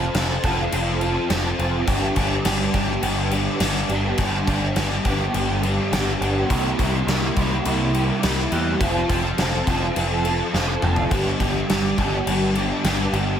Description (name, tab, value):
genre	rock, shoegaze and dream pop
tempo	104 BPM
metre	4/4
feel	straight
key	G mixolydian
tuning	A4 = 439 Hz
part	crunchy overdriven guitar	riff	0.0-13.4 s	G2 to A4	-22 LUFS	equal	ensemble chorus
part	growling picked electric bass	bass	0.0-13.3 s	F1 to E2	-25 LUFS	equal	overdrive
part	gated 80s drum kit	drums	0.1-13.3 s	crash cymbal, kick drum, snare drum, toms	-25 LUFS	left 1 dB	none
room	moderate concert hall reverb, RT60 1.8 s, small room ambience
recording	none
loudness	-19 LUFS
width	side -9 dB against mid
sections	0.0-13.4 A section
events	drum fill 10.5-11.1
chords	0.0 F; 1.9 G; 6.5 C7; 8.8 F; 11.1 G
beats	0.15 0.72 1.30 | 1.88 2.45 3.03 3.61 | 4.19 4.76 5.34 5.92 | 6.50 7.08 7.65 8.23 | 8.81 9.38 9.96 10.54 | 11.12 11.69 12.27 12.85